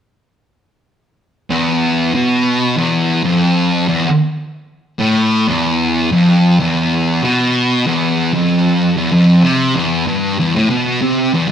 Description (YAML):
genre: metal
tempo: 95 BPM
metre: 4/4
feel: straight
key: E minor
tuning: A4 = 440 Hz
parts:
  - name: thick fuzz guitar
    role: solo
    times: 1.5-11.5 s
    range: E2 to C3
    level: -12 LUFS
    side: equal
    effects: distortion
room: wet stone room reverb, RT60 1.3 s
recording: band playing live in one room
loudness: -12 LUFS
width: side -8 dB against mid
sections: 1.5-11.5 A section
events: none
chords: none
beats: | 1.51 2.15 2.78 3.42 | 4.05 4.69 5.32 5.96 | 6.59 7.22 7.86 8.49 | 9.12 9.75 10.38 11.01